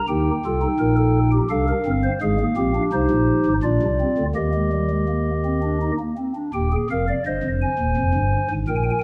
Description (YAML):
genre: classical, baroque-style 4-part fugue for pipe organ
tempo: 84 BPM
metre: 3/4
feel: straight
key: Eb major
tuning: A4 = 440 Hz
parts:
  - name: pipe organ, stopped flute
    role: solo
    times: 0.0-9.0 s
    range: Eb1 to Ab5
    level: -21 LUFS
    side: equal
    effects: none
room: moderate recital hall reverb, RT60 1.5 s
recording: none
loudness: -21 LUFS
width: mono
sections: 0.0-6.5 A section; 6.5-9.0 B section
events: none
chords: 0.1 Eb; 1.5 Gm11; 2.2 Fm/Ab; 3.6 Bb; 4.4 Eb; 8.0 Fm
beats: | 0.08 0.79 1.50 | 2.21 2.92 3.63 | 4.35 5.08 5.80 | 6.53 7.24 7.96 | 8.67